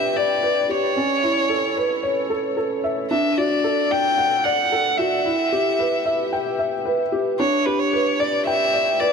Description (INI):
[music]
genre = electronica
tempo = 112 BPM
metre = 4/4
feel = straight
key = unclear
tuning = A4 = 440 Hz
[part]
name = dark violin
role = melody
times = 0.0-9.1 s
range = B4 to G5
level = -21 LUFS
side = equal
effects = none
[part]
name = felt-muted upright piano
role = riff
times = 0.0-9.1 s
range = C#4 to G5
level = -22 LUFS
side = equal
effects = tape echo
[sound]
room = moderate huge ambient reverb, RT60 6.4 s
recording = none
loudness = -18 LUFS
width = side -6 dB against mid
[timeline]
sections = 0.0-9.1 A section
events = none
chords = 0.0 G; 1.0 Aadd9; 3.1 D; 5.3 Em; 7.4 G